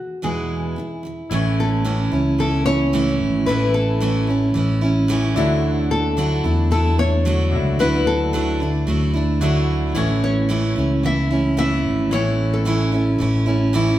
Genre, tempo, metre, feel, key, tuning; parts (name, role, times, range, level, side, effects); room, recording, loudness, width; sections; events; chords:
acoustic pop; 111 BPM; 4/4; straight; A major; A4 = 440 Hz
nylon-string guitar; melody; 0.0-14.0 s; F#4 to E5; -24 LUFS; left 2 dB
picked steel-string acoustic guitar; accompaniment; 0.2-14.0 s; E2 to E4; -20 LUFS; right 2 dB
bright concert grand piano; accompaniment; 1.3-14.0 s; D4 to E5; -30 LUFS; left 6 dB
fingered electric bass; bass; 1.3-14.0 s; G#1 to E2; -21 LUFS; equal
wet large studio reverb, RT60 1.4 s; band playing live in one room; -17 LUFS; side -13 dB against mid
0.0-1.3 A section; 1.3-14.0 B section
0.0 E; 1.3 A; 5.4 Dadd9; 10.0 A